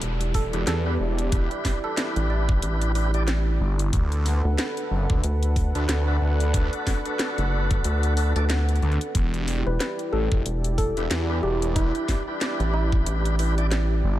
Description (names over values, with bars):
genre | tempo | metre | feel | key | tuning
glitch hop | 92 BPM | 4/4 | swing 58% on 16ths | E minor | A4 = 440 Hz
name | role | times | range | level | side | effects
dark analog pad | sustained chords | 0.0-14.2 s | D4 to F#5 | -31 LUFS | right 2 dB | chorus, sidechain pumping
rubbery square bass | bass | 0.0-14.0 s | E1 to D2 | -23 LUFS | equal | none
drum and bass drum kit | drums | 0.0-13.9 s | hi-hat, snare drum | -31 LUFS | equal | none
downlifter | sound effects | 0.0-3.9 s | none | -41 LUFS | equal | none
woody wave-folded pluck | melody | 0.3-3.0, 9.7-13.7 s | E4 to D5 | -32 LUFS | equal | chorus, tape echo
electronic kick drum | drums | 0.3-13.0 s | none | -24 LUFS | equal | none
tonewheel organ | stabs | 0.5-13.7 s | D4 to D5 | -32 LUFS | equal | overdrive, fast rotary speaker, sidechain pumping, tape echo
phased detuned saw bass | bass | 0.5-14.2 s | E1 to E2 | -23 LUFS | equal | phaser, tube saturation
room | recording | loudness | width
light reverb | none | -21 LUFS | side -14 dB against mid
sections
0.0-14.2 A section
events
none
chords
0.0 Em7; 3.9 D6; 9.2 Em7